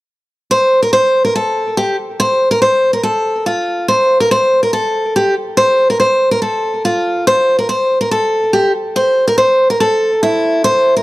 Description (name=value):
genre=hip hop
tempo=142 BPM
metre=4/4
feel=half-time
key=unclear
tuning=A4 = 440 Hz
part: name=picked steel-string acoustic guitar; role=melody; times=0.5-11.0 s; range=E4 to C5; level=-11 LUFS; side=equal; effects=tape echo
room=light reverb, studio ambience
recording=dry, gritty hardware recording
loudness=-11 LUFS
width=side -18 dB against mid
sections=0.5-11.0 A section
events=none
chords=none